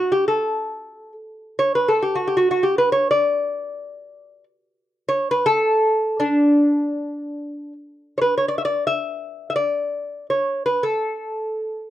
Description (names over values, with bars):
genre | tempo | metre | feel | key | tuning
Persian modal ensemble | free time | none | none | D dastgah mahur | A4 = 436 Hz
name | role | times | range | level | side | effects
lute | solo | 0.0-11.9 s | D4 to E5 | -19 LUFS | equal | none
room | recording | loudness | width
light reverb | dry, close 1970s-style studio recording | -18 LUFS | side -13 dB against mid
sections
0.0-8.0 A section; 8.0-11.9 A section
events
none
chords
none